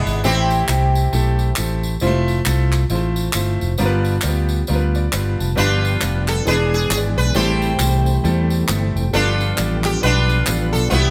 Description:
uptempo gospel; 135 BPM; 4/4; swing 61% on 8ths; A4 = 440 Hz
sitar; melody; 0.0-1.5, 5.6-11.1 s; G#3 to C5; -22 LUFS; equal
clear grand piano; accompaniment; 0.0-11.1 s; G2 to A5; -26 LUFS; equal
vintage muted fingered electric bass; bass; 0.0-11.1 s; E1 to E2; -21 LUFS; equal
tambourine and handclaps; percussion; 0.1-11.0 s; -29 LUFS; equal
mellow tonewheel organ; sustained chords; 5.6-11.1 s; E3 to B4; -28 LUFS; equal; slow rotary speaker
moderate stone room reverb, RT60 1.1 s; band playing live in one room; -18 LUFS; mono
0.0-11.1 A section
grand piano fill 4.7-5.6, 8.5-9.1
0.2 Am7; 2.0 Fmaj7; 3.8 G7; 6.5 E7; 7.4 Am7; 9.1 G7
| 0.24 0.68 1.13 1.57 | 2.02 2.46 2.91 3.35 | 3.79 4.24 4.68 5.13 | 5.57 6.02 6.46 6.91 | 7.36 7.80 8.25 8.69 | 9.14 9.58 10.03 10.47 | 10.92

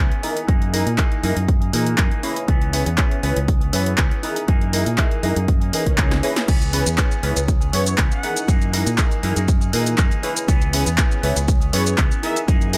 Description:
filtered disco house; 120 BPM; 4/4; straight; A4 = 440 Hz
funky polysynth comp; accompaniment; 0.0-12.8 s; E3 to B4; -28 LUFS; equal; chorus, phaser, sidechain pumping, low-pass filter
electric guitar with an envelope filter; riff; 0.0-12.8 s; E3 to G#4; -31 LUFS; equal; vintage 12-bit sampler grit, sidechain pumping, low-pass filter
modern bright fingered electric bass; bass; 0.0-12.8 s; C#2 to A#2; -25 LUFS; equal; sidechain pumping, low-pass filter
punchy analog drum machine; drums; 0.1-12.8 s; crash cymbal, handclaps, hi-hat, shaker, snare drum; -27 LUFS; equal; overdrive, sidechain pumping on hats, sidechain pumping on cymbals, sidechain pumping on perc
electronic kick drum; drums; 0.5-12.6 s; -21 LUFS; equal
swell; sound effects; 5.6-6.5 s; -35 LUFS; equal
brilliant trumpet section; melody; 7.7-8.5, 11.7-12.4 s; C#5 to F#5; -32 LUFS; equal; sidechain pumping, low-pass filter, tape echo
digital ambience; -19 LUFS; mono
0.0-12.8 A section
swell 5.6-6.5; drum fill 6.1-6.5
0.5 F#13
| 0.48 0.98 1.48 1.98 | 2.48 2.98 3.48 3.98 | 4.48 4.98 5.48 5.98 | 6.48 6.98 7.48 7.98 | 8.48 8.98 9.48 9.98 | 10.48 10.98 11.48 11.98 | 12.48

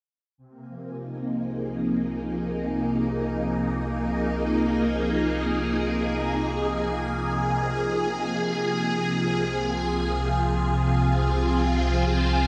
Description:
ambient, sequencer-driven space music; free time; A4 = 438 Hz
phased string machine; sustained chords; 0.4-12.5 s; C3 to Ab4; -26 LUFS; equal; ensemble chorus, phaser, shimmer reverb
round analog bass; bass; 0.4-12.5 s; C2; -32 LUFS; equal
pulsing gated texture; texture; 0.9-12.5 s; Ab5; -38 LUFS; equal; chorus, built-in reverb, shimmer reverb
wet plate reverb, RT60 3.2 s; -25 LUFS; mono
0.4-12.5 A section
fade-in on analog synth bass 0.4-12.5; fade-in on synth texture 0.4-12.5
0.4 Fm7/C
free time

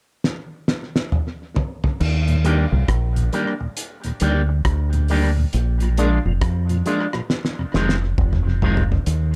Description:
roots reggae; 68 BPM; 4/4; swing 62% on 16ths; Eb major; A4 = 440 Hz
cloth-damped thuddy drum kit; drums; 0.2-9.3 s; crash cymbal, hi-hat, kick drum, rim click, snare drum, toms; -25 LUFS; equal; tape echo
deep dub fingered electric bass; bass; 2.0-9.4 s; F1 to F2; -21 LUFS; equal
tonewheel organ; accompaniment; 2.3-9.0 s; Eb2 to Eb4; -29 LUFS; equal; overdrive, chorus vibrato, slow rotary speaker, tube saturation
electric guitar with an envelope filter; accompaniment; 2.4-8.8 s; Eb3 to G4; -28 LUFS; equal; dub echo
light reverb; dark, warm production; -21 LUFS; mono
0.0-2.0 A section; 2.0-9.1 B section
drum fill 0.2-2.0, 7.3-9.1
0.0 N.C.; 2.0 Ebmaj7; 5.5 Bb7; 7.3 Fm7
0.24 1.12 | 2.01 2.89 3.77 4.65 | 5.54 6.42 7.30 8.18 | 9.06

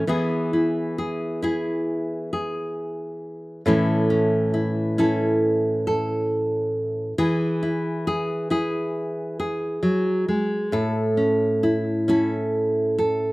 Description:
folk, solo fingerstyle acoustic guitar; 67 BPM; 4/4; straight; A4 = 440 Hz
nylon-string guitar; solo; 0.0-13.3 s; A2 to A4; -21 LUFS; equal; slapback echo
little or no reverb; recorded outdoors, with no room sound; -21 LUFS; side -20 dB against mid
0.1-13.3 A section
0.1 E; 3.7 A; 7.2 E; 10.7 A
| 0.08 0.98 1.88 2.77 | 3.65 4.53 5.42 6.29 | 7.17 8.06 8.95 9.84 | 10.73 11.62 12.53

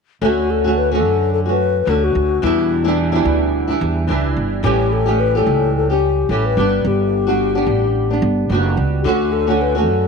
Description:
pop; 109 BPM; 4/4; swing 55% on 16ths; D major; A4 = 440 Hz
mellow wooden-headed alto flute; melody; 0.2-10.1 s; E4 to B4; -19 LUFS; left 12 dB
flamenco guitar; accompaniment; 0.2-10.1 s; E2 to G4; -19 LUFS; right 2 dB; double-tracked left and right
upright bass; bass; 0.2-10.1 s; F#1 to F#2; -19 LUFS; right 2 dB
light reverb; -14 LUFS; side -5 dB against mid
0.2-10.1 A section
0.2 Dmaj7; 2.4 Em7; 4.6 A7; 6.6 Gmaj7; 9.0 Dmaj7
| 0.22 0.77 1.33 1.88 | 2.43 2.98 3.53 4.08 | 4.63 5.19 5.74 6.29 | 6.84 7.39 7.95 8.50 | 9.05 9.60

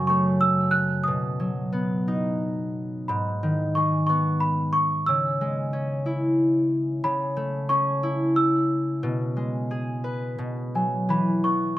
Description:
children's music, lullaby; 90 BPM; 3/4; rubato; E major; A4 = 440 Hz
small celesta; melody; 0.0-11.8 s; G#5 to F#6; -24 LUFS; right 1 dB; slapback echo
concert harp; accompaniment; 0.0-11.8 s; F#2 to B4; -24 LUFS; equal
little or no reverb; recorded outdoors, with no room sound; -22 LUFS; side -14 dB against mid
0.0-11.1 A section
0.0 F#m; 1.1 B; 3.1 G#m; 5.1 C#m; 7.0 A/C#; 9.0 E/B; 10.4 B5; 11.1 E5
0.40 | 1.06 1.72 2.40 | 3.08 3.75 4.42 | 5.08 5.74 6.39 | 7.04 7.70 8.37 | 9.04 9.71 10.40 | 11.10

